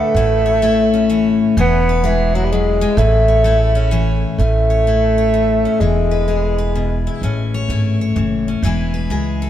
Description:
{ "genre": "honky-tonk and classic country", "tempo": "127 BPM", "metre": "3/4", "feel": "swing 64% on 8ths", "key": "A major", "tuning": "A4 = 440 Hz", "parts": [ { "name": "mellow bassoon", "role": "melody", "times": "0.0-7.0 s", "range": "E3 to B3", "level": "-17 LUFS", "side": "equal", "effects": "none" }, { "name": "picked steel-string acoustic guitar", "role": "accompaniment", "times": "0.0-9.5 s", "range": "A2 to C#5", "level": "-19 LUFS", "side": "left 4 dB", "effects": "none" }, { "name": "upright bass", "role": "bass", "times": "0.1-9.5 s", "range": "E1 to C#2", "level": "-18 LUFS", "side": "right 1 dB", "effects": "none" } ], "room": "moderate plate reverb, RT60 3.2 s", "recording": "heard from further back in the room", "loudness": "-13 LUFS", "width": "side -11 dB against mid", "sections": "0.0-4.4 A section; 4.4-9.5 B section", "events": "none", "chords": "0.2 A; 1.6 E; 3.0 A; 5.8 E; 7.2 A; 8.6 E", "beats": "| 0.16 0.63 1.10 | 1.57 2.04 2.51 | 2.98 3.45 3.92 | 4.39 4.86 5.33 | 5.81 6.28 6.75 | 7.22 7.69 8.16 | 8.64 9.11" }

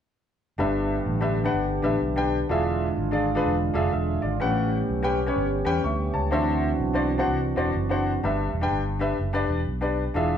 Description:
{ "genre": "uptempo gospel", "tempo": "126 BPM", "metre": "4/4", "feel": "swing 61% on 8ths", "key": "G major", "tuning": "A4 = 445 Hz", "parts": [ { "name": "warm grand piano", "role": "accompaniment", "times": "0.6-10.4 s", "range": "G2 to C#6", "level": "-25 LUFS", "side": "left 2 dB", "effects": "none" }, { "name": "tonewheel organ", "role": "sustained chords", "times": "0.6-8.2 s", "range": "D3 to G4", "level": "-28 LUFS", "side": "right 2 dB", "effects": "slow rotary speaker" }, { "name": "fingered electric bass", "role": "bass", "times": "0.6-10.4 s", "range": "E1 to E2", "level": "-28 LUFS", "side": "right 1 dB", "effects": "none" } ], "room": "moderate large studio reverb, RT60 1.2 s", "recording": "band playing live in one room", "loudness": "-22 LUFS", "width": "side -8 dB against mid", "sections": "0.6-8.2 A section; 8.2-10.4 B section", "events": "none", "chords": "0.6 G6; 2.5 E7b9; 4.4 A13; 6.3 D9; 8.2 G6", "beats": "| 0.58 1.06 1.54 2.02 | 2.50 2.97 3.45 3.93 | 4.41 4.88 5.36 5.84 | 6.32 6.80 7.28 7.76 | 8.23 8.71 9.19 9.67 | 10.15" }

